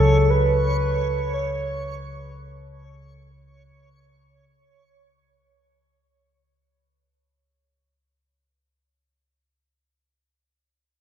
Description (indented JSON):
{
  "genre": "dark ambient drone",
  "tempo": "free time",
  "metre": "none",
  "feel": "none",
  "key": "unclear",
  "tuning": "A4 = 440 Hz",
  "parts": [
    { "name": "mellow horn-like synth lead", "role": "melody", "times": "0.0-2.3 s", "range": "A4 to C#5", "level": "-22 LUFS", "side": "right 1 dB", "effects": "wide subtle chorus, ping-pong delay" },
    { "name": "gamelan-type bossed gongs", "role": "arpeggios", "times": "0.0-9.7 s", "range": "none", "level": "barely audible", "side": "none", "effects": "none" },
    { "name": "deep rumbling drone", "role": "drone", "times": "0.0-4.4 s", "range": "C#2 to C#3", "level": "-23 LUFS", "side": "equal", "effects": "built-in reverb" },
    { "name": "backwards swelling texture", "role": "texture", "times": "0.0-4.3 s", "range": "C#5", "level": "-31 LUFS", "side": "right 2 dB", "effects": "built-in reverb" }
  ],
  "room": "wet cathedral reverb, RT60 4.8 s",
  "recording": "none",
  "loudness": "-20 LUFS",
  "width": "side -9 dB against mid",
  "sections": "0.0-4.3 A section",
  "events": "fade-out 0.0-4.3",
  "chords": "none"
}